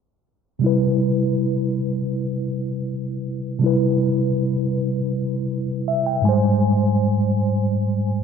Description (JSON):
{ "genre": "R&B", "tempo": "free time", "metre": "none", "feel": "none", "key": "C major", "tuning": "A4 = 440 Hz", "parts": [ { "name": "mellow tine electric piano", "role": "accompaniment", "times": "0.6-8.2 s", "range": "Ab2 to Ab5", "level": "-19 LUFS", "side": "equal", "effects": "medium stereo tremolo" } ], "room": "moderate lush hall reverb, RT60 2.6 s", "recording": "dark, warm production, low-pass filter", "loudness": "-19 LUFS", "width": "side -7 dB against mid", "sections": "0.6-8.2 A section", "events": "filter sweep 0.6-8.2; tine electric piano fill 5.5-6.6", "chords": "0.6 Cmaj7; 6.2 Abmaj7", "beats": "free time" }